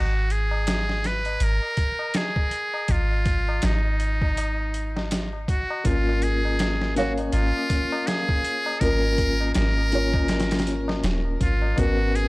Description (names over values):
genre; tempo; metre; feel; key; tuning
trip hop; 81 BPM; 4/4; swing 58% on 16ths; unclear; A4 = 441 Hz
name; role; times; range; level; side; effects
trumpet with metal mute; melody; 0.0-12.3 s; D#4 to B4; -27 LUFS; equal; tape echo
soft 808-style bass; bass; 0.0-12.3 s; D#1 to G#1; -24 LUFS; equal; tube saturation
tabla; percussion; 0.1-12.1 s; none; -37 LUFS; left 2 dB; none
trip hop sampler-style drum kit; drums; 0.3-12.3 s; hi-hat, kick drum, snare drum; -26 LUFS; equal; overdrive, studio reverb
felt-muted upright piano; accompaniment; 5.8-12.3 s; A#3 to E#5; -26 LUFS; left 2 dB; tremolo, tape echo
room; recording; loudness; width
small room ambience; dry, gritty hardware recording; -21 LUFS; side -22 dB against mid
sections
0.0-12.3 A section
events
none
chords
0.0 G#5; 5.9 A#m/G#; 11.8 G#m11